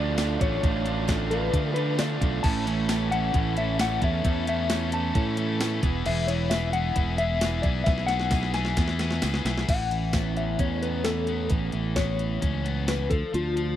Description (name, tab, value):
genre	indie rock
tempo	132 BPM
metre	4/4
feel	straight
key	A major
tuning	A4 = 441 Hz
part	mellow electric guitar	melody	0.0-13.8 s	F4 to A5	-30 LUFS	left 4 dB	tremolo
part	combo organ	sustained chords	0.0-9.7 s	C#4 to A5	-40 LUFS	right 2 dB	none
part	crunchy overdriven guitar	riff	0.0-13.8 s	E3 to A4	-33 LUFS	left 6 dB	none
part	crunchy overdriven guitar	riff	0.0-13.8 s	A2 to F4	-33 LUFS	right 15 dB	wide subtle chorus
part	fingered electric bass	bass	0.0-13.8 s	E1 to D3	-28 LUFS	equal	none
part	gated 80s digital drum machine	drums	0.2-13.7 s	crash cymbal, hi-hat, kick drum, snare drum, tambourine	-27 LUFS	equal	gated reverb, gated reverb snare
part	tambourine	percussion	0.2-9.3 s	none	-44 LUFS	right 30 dB	none
room	little or no reverb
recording	dry, close 1970s-style studio recording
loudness	-23 LUFS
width	side -11 dB against mid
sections	0.0-9.7 A section; 9.7-13.8 B section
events	drum fill 7.9-9.7; clean electric guitar solo 9.7-13.8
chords	0.0 Dm; 2.4 Aadd9; 5.8 E; 9.7 Aadd9; 13.1 Dm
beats	0.18 | 0.63 1.08 1.53 1.99 | 2.44 2.89 3.34 3.80 | 4.25 4.70 5.15 5.61 | 6.06 6.51 6.96 7.42 | 7.87 8.32 8.78 9.23 | 9.69 10.14 10.60 11.06 | 11.51 11.97 12.43 12.89 | 13.34